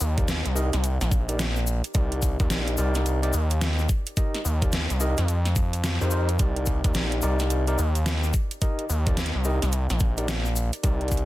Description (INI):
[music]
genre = glitch hop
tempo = 108 BPM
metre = 4/4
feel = swing 62% on 16ths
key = C minor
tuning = A4 = 440 Hz
[part]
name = gritty driven synth bass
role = bass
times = 0.0-11.3 s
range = Bb1 to F2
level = -24 LUFS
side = equal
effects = overdrive
[part]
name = cabasa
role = percussion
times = 0.0-11.3 s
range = none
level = -36 LUFS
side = left 5 dB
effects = none
[part]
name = overdriven tine electric piano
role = stabs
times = 0.2-11.2 s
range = Eb4 to Eb5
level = -31 LUFS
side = equal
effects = sidechain pumping, tape echo
[part]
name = dubstep drum kit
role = drums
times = 0.2-11.3 s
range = hi-hat, snare drum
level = -30 LUFS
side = equal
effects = none
[part]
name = electronic kick drum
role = drums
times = 0.2-11.3 s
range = none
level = -24 LUFS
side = equal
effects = none
[sound]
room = little or no reverb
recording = dense, heavily limited modern master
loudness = -22 LUFS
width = side -16 dB against mid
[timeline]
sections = 0.0-11.3 A section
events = none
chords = 0.0 Cm9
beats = 0.28 0.84 1.39 | 1.95 2.50 3.06 3.62 | 4.17 4.73 5.28 5.84 | 6.39 6.95 7.50 8.06 | 8.62 9.17 9.73 10.28 | 10.84